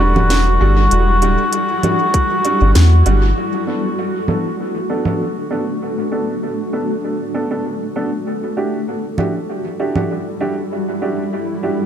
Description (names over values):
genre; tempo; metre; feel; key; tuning
ambient dub; 98 BPM; 4/4; swing 54% on 16ths; E minor; A4 = 440 Hz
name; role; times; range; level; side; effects
melodica; melody; 0.0-2.7 s; F#4; -20 LUFS; left 1 dB; dub echo
granular cloud pad; sustained chords; 0.0-11.9 s; G3 to D5; -22 LUFS; left 1 dB; built-in reverb
warm upright piano; stabs; 0.0-11.8 s; G3 to A4; -22 LUFS; right 2 dB; low-pass filter, dub echo
soft dub sub bass; bass; 0.0-3.3 s; D1 to E2; -12 LUFS; equal; none
organic electronic drum kit; drums; 0.2-5.2, 9.2-10.1 s; congas, hi-hat, snare drum; -22 LUFS; right 1 dB; overdrive, low-pass filter on hats, low-pass filter on perc, low-pass filter on snare, low-pass filter on room, dub echo
electronic kick drum; drums; 2.1-2.3 s; none; -16 LUFS; equal; overdrive
room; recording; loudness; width
light reverb; echo-heavy mix; -15 LUFS; side -9 dB against mid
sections
0.0-3.4 A section; 3.4-11.9 B section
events
filter sweep on ambient pad 3.4-11.9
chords
0.0 Em9; 3.4 Bm7; 8.3 Em9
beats
0.30 | 0.92 1.53 2.14 2.75 | 3.36 3.98 4.59 5.20 | 5.81 6.42 7.04 7.65 | 8.26 8.87 9.49 10.10 | 10.71 11.32